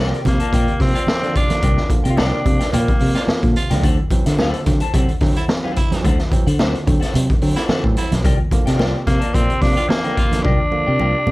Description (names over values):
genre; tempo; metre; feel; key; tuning
funk; 109 BPM; 4/4; straight; unclear; A4 = 441 Hz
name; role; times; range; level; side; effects
clean electric guitar; accompaniment; 0.0-11.3 s; E4 to A5; -27 LUFS; left 3 dB; wide subtle chorus
barky tine electric piano; stabs; 0.0-11.3 s; C3 to C4; -26 LUFS; right 3 dB; overdrive
fingered electric bass; bass; 0.0-11.3 s; B1 to D3; -19 LUFS; equal; none
raw garage drum kit; drums; 0.1-10.6 s; hi-hat, kick drum, snare drum; -18 LUFS; equal; none
breathy tenor saxophone; melody; 0.3-3.5, 9.1-11.3 s; Bb3 to F4; -21 LUFS; equal; none
congas; percussion; 0.3-11.3 s; none; -27 LUFS; right 3 dB; none
breathy baritone saxophone; second line; 0.9-10.3 s; E4 to F4; -28 LUFS; right 4 dB; none
room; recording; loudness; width
little or no reverb; dark, warm production; -15 LUFS; side -20 dB against mid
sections
0.0-11.3 A section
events
drum fill 10.4-11.3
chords
0.0 C9sus4; 3.8 D9; 8.2 C9sus4